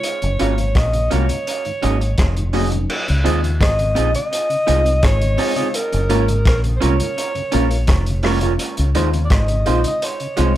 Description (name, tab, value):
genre	lovers rock reggae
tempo	84 BPM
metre	4/4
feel	straight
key	Db major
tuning	A4 = 438 Hz
part	breathy alto saxophone	melody	0.0-10.6 s	Bb4 to Eb5	-22 LUFS	equal	tape echo
part	crunchy breakbeat drum kit	drums	0.0-10.5 s	crash cymbal, hi-hat, kick drum, rim click	-21 LUFS	equal	none
part	mellow tonewheel organ	accompaniment	0.2-10.5 s	Gb2 to Gb4	-31 LUFS	left 3 dB	none
part	deep dub fingered electric bass	bass	0.2-10.6 s	F1 to Eb2	-18 LUFS	equal	none
part	FM electric piano with soft pad layer	accompaniment	0.4-10.5 s	Gb3 to F4	-25 LUFS	left 2 dB	chorus, phaser
part	electric guitar through a small old amp	stabs	0.4-10.5 s	Ab3 to F5	-24 LUFS	right 5 dB	dub echo
room	light reverb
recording	none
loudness	-15 LUFS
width	side -13 dB against mid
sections	0.0-2.9 A section; 2.9-10.6 B section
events	none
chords	0.0 Gbmaj7; 1.5 Ab7sus4; 2.9 Dbmaj9; 5.7 Gbmaj7; 8.6 Dbmaj9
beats	| 0.04 0.76 1.47 2.18 | 2.90 3.61 4.32 5.03 | 5.75 6.46 7.17 7.88 | 8.60 9.31 10.02